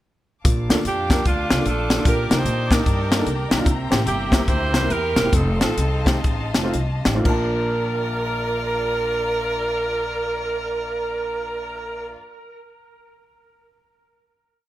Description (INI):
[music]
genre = uptempo gospel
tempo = 112-150 BPM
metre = 4/4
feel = swing 63% on 8ths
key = Bb major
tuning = A4 = 440 Hz
[part]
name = warm upright piano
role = accompaniment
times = 0.4-12.2 s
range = Bb1 to A5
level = -27 LUFS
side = equal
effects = none
[part]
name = clear studio string section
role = sustained chords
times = 0.4-12.1 s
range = F4 to D6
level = -33 LUFS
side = left 3 dB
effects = none
[part]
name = upright bass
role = bass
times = 0.5-12.1 s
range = E1 to Bb2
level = -26 LUFS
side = equal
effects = none
[part]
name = crisp fusion drum kit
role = drums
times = 0.5-7.4 s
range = crash cymbal, hi-hat, kick drum, snare drum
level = -20 LUFS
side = left 1 dB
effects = none
[part]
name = edgy saxophone section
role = melody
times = 0.9-12.1 s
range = A3 to C5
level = -24 LUFS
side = right 2 dB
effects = tape echo
[sound]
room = light reverb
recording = none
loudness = -19 LUFS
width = side -14 dB against mid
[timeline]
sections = 0.5-7.3 breakdown; 7.3-11.5 final chord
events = slowing down 3.7-7.3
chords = 0.5 Bbmaj7; 2.1 Ebmaj7/Bb; 3.7 C7; 5.3 F7; 7.3 Bbmaj7